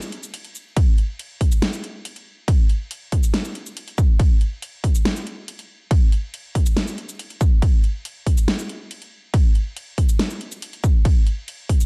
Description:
dubstep; 140 BPM; 4/4; half-time
dubstep drum kit; drums; 0.0-11.9 s; crash cymbal, hi-hat, shaker, snare drum; -31 LUFS; equal
electronic kick drum; drums; 0.8-11.8 s; -19 LUFS; equal
little or no reverb; dark, warm production; -21 LUFS; mono
0.0-11.9 A section
break 0.3-0.8

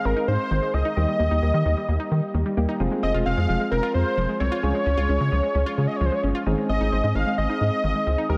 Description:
synth-pop; 131 BPM; 4/4; straight; A4 = 445 Hz
unison lead; melody; 0.0-8.4 s; Bb4 to F5; -28 LUFS; equal; analog delay
soft electric-piano-like synth keys; accompaniment; 0.0-8.4 s; G3 to Ab4; -31 LUFS; equal; chorus, analog delay
analog pluck; arpeggios; 0.1-8.4 s; Eb3 to F4; -33 LUFS; equal; chorus, analog delay
rubbery square bass; bass; 0.1-8.4 s; F1 to Eb3; -26 LUFS; equal
moderate plate reverb, RT60 3.4 s; echo-heavy mix; -23 LUFS; mono
0.0-8.4 A section
0.0 Ab; 1.0 Eb; 2.8 Fm; 4.6 Db; 6.5 Ab

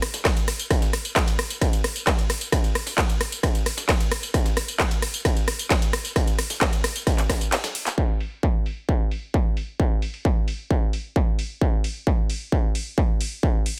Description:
techno; 132 BPM; 4/4; straight
dusty soul sampler-style drum kit; drums; 0.0-8.0 s; hi-hat, snare drum, tambourine; -38 LUFS; equal
techno drum kit; drums; 0.0-13.8 s; handclaps, hi-hat, ride cymbal, rim click, tambourine; -28 LUFS; equal; sidechain pumping on hats, low-pass filter on hats, studio reverb, sidechain pumping on perc, low-pass filter on perc, low-pass filter on snare, sidechain pumping on cymbals, low-pass filter on cymbals
electronic kick drum; drums; 0.2-13.5 s; -24 LUFS; equal; distortion, studio reverb
digital ambience; -24 LUFS; mono
0.0-8.0 A section; 8.0-13.8 B section
drop 0.0-8.0; kick drops out 7.5-8.0; drum fill 7.5-8.0

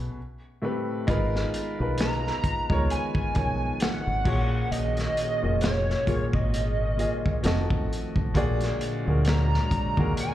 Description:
R&B, neo-soul; 66 BPM; 4/4; swing 58% on 16ths; G# dorian; A4 = 439 Hz
hollow square lead; melody; 0.0-10.3 s; C#5 to A#5; -30 LUFS; right 1 dB; chorus, slapback echo
warm upright piano; accompaniment; 0.0-10.3 s; A2 to D#5; -30 LUFS; equal; slapback echo
deep dub fingered electric bass; bass; 0.0-10.1 s; E#1 to D#2; -26 LUFS; equal
hollow soft pad; sustained chords; 1.1-10.3 s; D3 to A#5; -36 LUFS; right 2 dB; chorus
dark trombone section; stabs; 1.1-10.3 s; E#3 to F#4; -42 LUFS; left 2 dB
crunchy breakbeat drum kit; drums; 1.1-10.3 s; crash cymbal, hi-hat, kick drum, snare drum; -28 LUFS; equal
studio reverb; live gig heard through the venue's PA, club reverb; -23 LUFS; side -13 dB against mid
0.0-1.1 A section; 1.1-10.3 B section
0.2 Am9; 1.1 G#m69; 4.3 F#maj9; 7.4 F7b9; 8.3 A#7b13

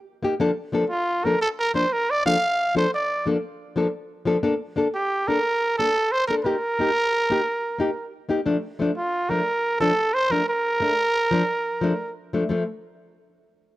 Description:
highlife; 119 BPM (dotted quarters); 12/8; straight; A4 = 440 Hz
nylon-string guitar; accompaniment; 0.2-12.6 s; F3 to A4; -23 LUFS; left 2 dB
growling trumpet; melody; 0.9-12.1 s; F4 to F5; -21 LUFS; right 1 dB
small room ambience; dry, close 1970s-style studio recording; -21 LUFS; side -16 dB against mid
0.0-8.5 A section; 8.5-12.5 B section; 12.5-13.8 C section
0.4 Bbmaj7; 4.4 Gmadd9 (rootless); 6.4 Eb; 8.5 F6

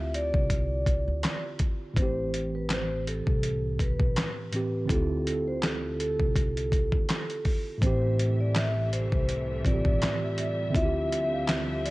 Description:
lo-fi hip hop; 82 BPM; 4/4; swing 57% on 16ths; A minor; A4 = 436 Hz
vibraphone with soft mallets; melody; 0.0-11.9 s; A4 to F5; -32 LUFS; equal; low-pass filter
tine electric piano; accompaniment; 0.0-11.9 s; A2 to G4; -32 LUFS; right 1 dB; medium stereo tremolo, cassette tape, low-pass filter
upright bass; bass; 0.0-11.9 s; A1 to D2; -31 LUFS; equal
dusty soul sampler-style drum kit; drums; 0.1-11.9 s; handclaps, hi-hat, kick drum, snare drum; -28 LUFS; equal; overdrive, vintage 12-bit sampler grit
warm studio string section; sustained chords; 7.8-11.9 s; C3 to E5; -37 LUFS; left 1 dB; low-pass filter
studio ambience; cassette tape; -25 LUFS; side -20 dB against mid
0.0-11.9 A section
0.0 Dm11; 2.0 Am7; 4.9 Dm11; 7.8 Am7; 10.7 Dm11

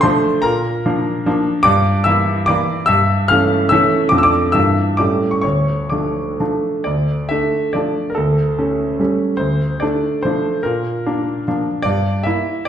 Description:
classical, romantic triple-time dance for piano with dotted rhythms; 119-158 BPM; 3/4; rubato; D minor; A4 = 440 Hz
clear grand piano; solo; 0.0-12.7 s; D2 to F6; -14 LUFS; equal
wet recital hall reverb, RT60 1.3 s; heard from further back in the room; -14 LUFS; side -9 dB against mid
0.0-6.9 A section; 6.9-12.7 A section
0.4 Bb; 1.6 Edim/G; 2.9 A7/G; 4.1 Dm/F; 4.5 Em7b5/G; 5.0 A7; 5.4 Dm; 8.2 A7/D; 9.4 Dm; 10.6 Bb; 11.8 Edim/G

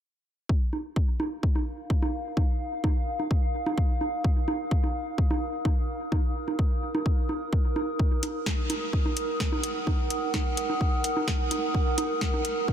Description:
minimal techno; 128 BPM; 4/4; straight; Eb minor; A4 = 440 Hz
electronic kick drum; drums; 0.5-12.7 s; -25 LUFS; equal
warbly tape-like pad; texture; 1.7-12.7 s; Eb4 to Eb6; -31 LUFS; right 1 dB; chorus, built-in reverb, sidechain pumping
bongos; percussion; 0.7-12.4 s; -34 LUFS; right 2 dB; overdrive, tape echo
booming analog drum machine; drums; 8.2-12.5 s; hi-hat, snare drum; -33 LUFS; equal; low-pass filter on hats, low-pass filter on snare
light reverb, digital ambience; -25 LUFS; side -10 dB against mid
0.5-12.7 A section
0.5 Eb5

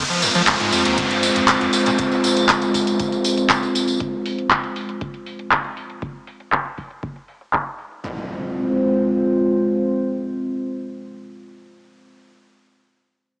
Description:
acid house; 119 BPM; 4/4; straight; F minor; A4 = 440 Hz
dark analog pad; sustained chords; 0.0-12.1 s; Ab3 to C5; -20 LUFS; equal; chorus, sidechain pumping
liquid acid bass; riff; 0.0-1.9 s; Eb2 to F3; -24 LUFS; equal; phaser, overdrive, analog chorus, vintage 12-bit sampler grit, sidechain pumping, tape echo
downlifter and impact; sound effects; 0.0-4.0, 8.0-12.1 s; -24 LUFS; equal
tambourine; percussion; 0.1-4.0 s; -24 LUFS; equal
booming analog drum machine; drums; 0.2-8.0 s; handclaps, hi-hat; -20 LUFS; equal; low-pass filter on hats, low-pass filter on snare, low-pass filter on toms, low-pass filter on room
electronic kick drum; drums; 0.5-7.6 s; -32 LUFS; equal
moderate lush hall reverb, RT60 1.8 s, digital ambience; small speaker sound; -17 LUFS; side -39 dB against mid
0.0-8.0 A section; 8.0-12.1 B section
filter sweep on drum 0.0-8.0
0.0 Fm

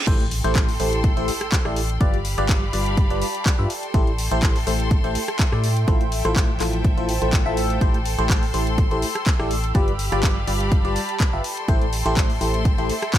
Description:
piano house; 124 BPM; 4/4; swing 54% on 16ths; A minor; A4 = 441 Hz
reverse cymbal and impact; sound effects; 0.0-2.0 s; -32 LUFS; right 2 dB
clear studio violin section; sustained chords; 0.1-13.2 s; G4 to C6; -32 LUFS; left 1 dB; sidechain pumping
barking FM electric piano; riff; 0.1-12.9 s; G3 to E5; -26 LUFS; left 1 dB; phaser, sidechain pumping, tape echo
organ-like FM bass; bass; 0.1-12.9 s; G1 to A2; -24 LUFS; equal; sidechain pumping
electronic kick drum; drums; 0.1-13.2 s; -19 LUFS; equal; overdrive, small room ambience
house drum kit; drums; 0.1-13.2 s; crash cymbal, handclaps, hi-hat, rim click; -28 LUFS; left 1 dB; overdrive, small room ambience
warbly tape-like pad; texture; 0.1-13.2 s; F3 to E6; -31 LUFS; right 1 dB; chorus, built-in reverb, sidechain pumping
digital ambience; -18 LUFS; side -12 dB against mid
0.1-13.2 A section
drop 0.1-13.2; impact 0.1-2.0
0.1 Am7; 2.0 G7; 3.7 Am7; 5.9 Fmaj7/A; 7.8 Am7; 9.7 G7; 11.4 Am7

